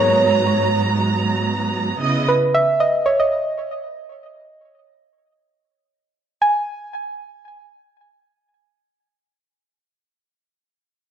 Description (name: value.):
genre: amapiano.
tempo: free time.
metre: none.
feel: none.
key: unclear.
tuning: A4 = 440 Hz.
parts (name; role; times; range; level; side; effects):
soft round pluck; melody; 0.0-9.8 s; B4 to G#5; -18 LUFS; right 1 dB; chorus, digital delay.
warm symphonic string section; sustained chords; 0.0-2.3 s; G#2 to A#5; -19 LUFS; right 2 dB; none.
room: moderate digital room reverb, RT60 1.2 s, small room ambience.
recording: dark, warm production.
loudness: -16 LUFS.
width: side -9 dB against mid.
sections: 0.0-6.4 A section; 6.4-10.5 B section.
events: none.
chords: 0.0 G#m9; 2.0 C#m9; 6.4 N.C..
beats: free time.